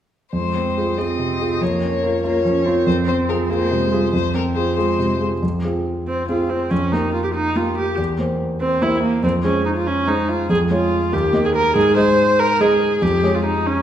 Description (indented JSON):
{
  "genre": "quick classical-period movement for piano quartet",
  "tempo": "95 BPM (dotted quarters)",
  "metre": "6/8",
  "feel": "straight",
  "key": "F minor, Ab major from 10.5 s",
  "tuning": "A4 = 438 Hz",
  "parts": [
    { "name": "rich violin", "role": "melody", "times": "0.3-5.2 s", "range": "Bb4 to Eb5", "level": "-24 LUFS", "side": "left 5 dB", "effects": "none" },
    { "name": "dark cello", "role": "second line", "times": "0.3-5.2 s", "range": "F3 to Db4", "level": "-25 LUFS", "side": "right 4 dB", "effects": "none" },
    { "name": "warm concert grand piano", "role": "accompaniment", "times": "0.3-13.8 s", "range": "Eb2 to Eb5", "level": "-19 LUFS", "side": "equal", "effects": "none" },
    { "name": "rich viola", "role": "accompaniment", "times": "6.1-13.8 s", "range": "Bb3 to C5", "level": "-18 LUFS", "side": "right 1 dB", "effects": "none" }
  ],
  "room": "wet recital hall reverb, RT60 1.4 s",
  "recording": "recorded in a church or concert hall",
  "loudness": "-16 LUFS",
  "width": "side -10 dB against mid",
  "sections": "0.3-5.4 A section; 5.4-13.8 B section",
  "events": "none",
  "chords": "0.3 Fm; 1.6 Bbm/F; 2.9 Fm; 6.7 F9sus4; 8.0 C7/E; 9.2 Fm; 10.5 Db/F; 11.1 Eb; 11.8 Ab; 13.0 Db/F"
}